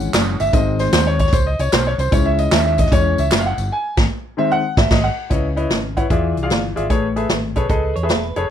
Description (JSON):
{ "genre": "uptempo gospel", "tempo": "151 BPM", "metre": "4/4", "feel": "swing 66% on 8ths", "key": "unclear", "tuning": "A4 = 441 Hz", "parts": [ { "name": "clear concert grand piano", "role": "accompaniment", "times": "0.0-8.4 s", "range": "A2 to G#5", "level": "-19 LUFS", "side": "left 1 dB", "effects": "none" }, { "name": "fingered electric bass", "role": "bass", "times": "0.0-8.5 s", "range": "E1 to E2", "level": "-21 LUFS", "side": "equal", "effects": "none" }, { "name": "swinging big-band drum kit", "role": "drums", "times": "0.0-8.4 s", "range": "crash cymbal, hi-hat, kick drum, snare drum", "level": "-18 LUFS", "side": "equal", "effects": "none" }, { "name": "tambourine and handclaps", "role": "percussion", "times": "0.0-3.6 s", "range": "none", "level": "-28 LUFS", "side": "right 2 dB", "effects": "none" }, { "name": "clean electric guitar", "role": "second line", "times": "7.7-8.5 s", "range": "A4 to C#5", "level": "-28 LUFS", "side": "right 6 dB", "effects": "warbly pitch drift" } ], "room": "little or no reverb", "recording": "none", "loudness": "-15 LUFS", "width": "side -9 dB against mid", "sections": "0.0-5.3 A section; 5.3-8.5 B section", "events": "grand piano solo 0.0-5.3; band accent 3.7-5.3", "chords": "0.0 C#m; 0.5 G#; 2.1 C#m; 3.7 G#; 5.3 C#m9; 6.1 E7b9; 6.9 Amaj9" }